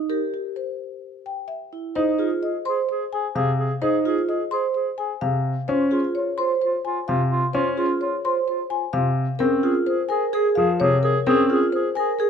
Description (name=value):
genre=classical, minimalist pattern music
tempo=129 BPM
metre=4/4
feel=straight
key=F minor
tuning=A4 = 440 Hz
part: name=vibraphone with medium mallets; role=arpeggios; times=0.0-12.3 s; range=Db4 to C5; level=-23 LUFS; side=right 5 dB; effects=none
part: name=marimba with soft mallets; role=melody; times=0.1-12.3 s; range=G4 to C6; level=-26 LUFS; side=left 8 dB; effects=none
part: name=warm clarinet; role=second line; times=2.0-12.3 s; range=F4 to Ab4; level=-28 LUFS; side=right 2 dB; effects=none
part: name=warm grand piano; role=accompaniment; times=2.0-11.6 s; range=C3 to Eb4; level=-23 LUFS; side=equal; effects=none
room=light reverb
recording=none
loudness=-20 LUFS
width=side -7 dB against mid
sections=0.0-2.0 A section; 2.0-12.3 B section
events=none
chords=0.1 C (rootless); 2.0 Fm; 5.7 Db; 9.4 Bbm7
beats=| 0.10 0.57 1.03 1.50 | 1.96 2.43 2.89 3.36 | 3.82 4.29 4.75 5.22 | 5.68 6.15 6.62 7.08 | 7.54 8.01 8.48 8.94 | 9.41 9.87 10.34 10.80 | 11.27 11.73 12.20